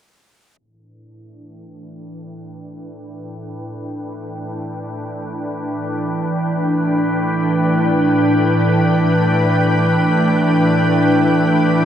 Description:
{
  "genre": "ambient",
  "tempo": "free time",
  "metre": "none",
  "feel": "none",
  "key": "unclear",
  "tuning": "A4 = 440 Hz",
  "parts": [
    { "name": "soft additive organ-like pad", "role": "sustained chords", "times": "1.8-11.8 s", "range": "A2 to G5", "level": "-16 LUFS", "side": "equal", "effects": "ensemble chorus, built-in reverb" }
  ],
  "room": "wet lush hall reverb, RT60 2.7 s",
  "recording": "dreamy mix soaked in reverb, low-pass filter",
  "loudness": "-14 LUFS",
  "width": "side -9 dB against mid",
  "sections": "0.6-10.9 A section",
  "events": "fade-in on ambient pad 0.6-10.9; filter sweep 0.6-10.9",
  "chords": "0.6 A9sus4",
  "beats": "free time"
}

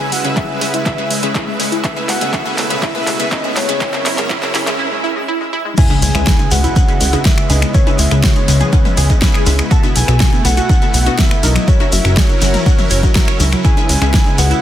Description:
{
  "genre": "progressive house",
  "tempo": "122 BPM",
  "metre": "4/4",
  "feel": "straight",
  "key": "C# minor",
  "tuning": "A4 = 439 Hz",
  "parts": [
    { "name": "soft octave-layered synth lead", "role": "melody", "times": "0.0-14.6 s", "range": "C#5 to A5", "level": "-23 LUFS", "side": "left 1 dB", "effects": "chorus, cassette tape, digital delay" },
    { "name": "supersaw pad", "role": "sustained chords", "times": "0.0-14.6 s", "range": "F#2 to B4", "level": "-23 LUFS", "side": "right 2 dB", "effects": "sidechain pumping" },
    { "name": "tight sequenced synth", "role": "arpeggios", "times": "0.0-14.6 s", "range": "F#3 to C#5", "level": "-23 LUFS", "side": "left 1 dB", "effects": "chorus, phaser, sidechain pumping, digital delay" },
    { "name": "wide unison pluck", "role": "stabs", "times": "0.0-14.5 s", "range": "B2 to F#5", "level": "-21 LUFS", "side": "left 1 dB", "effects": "wide subtle chorus, sidechain pumping, digital delay" },
    { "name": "riser and impact", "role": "sound effects", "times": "0.1-7.7 s", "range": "none", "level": "-26 LUFS", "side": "right 1 dB", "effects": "none" },
    { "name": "twinkling granular texture", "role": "texture", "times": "0.0-4.8 s", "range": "E6", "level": "-30 LUFS", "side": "right 2 dB", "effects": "built-in reverb, sidechain pumping" },
    { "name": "deep house drum kit", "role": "drums", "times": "0.1-14.6 s", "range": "crash cymbal, finger snaps, handclaps, hi-hat, snare drum", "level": "-20 LUFS", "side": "equal", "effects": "overdrive, studio reverb" },
    { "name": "electronic kick drum", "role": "drums", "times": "0.4-14.2 s", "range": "none", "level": "-14 LUFS", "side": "equal", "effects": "overdrive, studio reverb" },
    { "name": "shekere", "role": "percussion", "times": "5.8-14.6 s", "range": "none", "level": "-25 LUFS", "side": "left 3 dB", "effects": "none" },
    { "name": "electronic congas and toms", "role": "percussion", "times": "5.9-14.4 s", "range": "none", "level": "-26 LUFS", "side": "left 3 dB", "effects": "sidechain pumping on perc, studio reverb, sidechain pumping on toms" },
    { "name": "plucky analog bass", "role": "bass", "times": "6.0-14.5 s", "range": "F#1 to C#2", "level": "-14 LUFS", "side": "equal", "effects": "sidechain pumping" }
  ],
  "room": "light reverb, digital ambience",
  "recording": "dense, heavily limited modern master, high-pass filter",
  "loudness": "-11 LUFS",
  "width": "side -12 dB against mid",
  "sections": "0.0-5.8 A section; 5.8-14.6 B section",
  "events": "build-up 0.0-5.8; drum fill 0.0-4.8; filter sweep on synth arpeggio sound 0.0-5.8; riser 0.1-4.8; break 4.8-5.8; drop 5.8-14.6; impact 5.8-7.7",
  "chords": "0.0 C#m7; 1.8 B7sus4; 3.8 F#7; 5.8 C#m7; 9.7 B7sus4; 11.7 F#7; 13.6 C#m7",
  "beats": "0.37 0.86 1.35 | 1.84 2.33 2.83 3.32 | 3.81 4.30 4.79 5.29 | 5.78 6.27 6.76 7.25 | 7.74 8.24 8.73 9.22 | 9.71 10.20 10.70 11.19 | 11.68 12.17 12.66 13.15 | 13.65 14.14"
}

